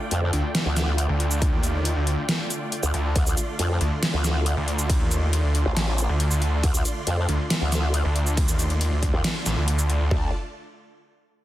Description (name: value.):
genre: heavy wobble dubstep.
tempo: 138 BPM.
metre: 4/4.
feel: half-time.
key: D phrygian.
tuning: A4 = 438 Hz.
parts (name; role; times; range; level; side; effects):
supersaw chords; sustained chords; 0.0-10.3 s; D3 to C6; -31 LUFS; right 1 dB; sidechain pumping, low-pass filter.
growl bass; bass; 0.1-10.3 s; A1 to F2; -23 LUFS; equal; chorus, overdrive.
dubstep drum kit; drums; 0.1-10.0 s; hi-hat, ride cymbal, shaker, snare drum; -28 LUFS; equal; overdrive.
snarling distorted saw bass; bass; 0.3-10.1 s; A1 to Eb2; -23 LUFS; equal; distortion, overdrive.
big-room dance drum kit; drums; 1.4-10.2 s; kick drum, toms; -24 LUFS; equal; none.
room: little or no reverb.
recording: dense, heavily limited modern master.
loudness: -21 LUFS.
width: side -14 dB against mid.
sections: 0.0-10.1 A section; 10.1-11.4 B section.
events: drop 0.0-10.1.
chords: 0.0 Dm.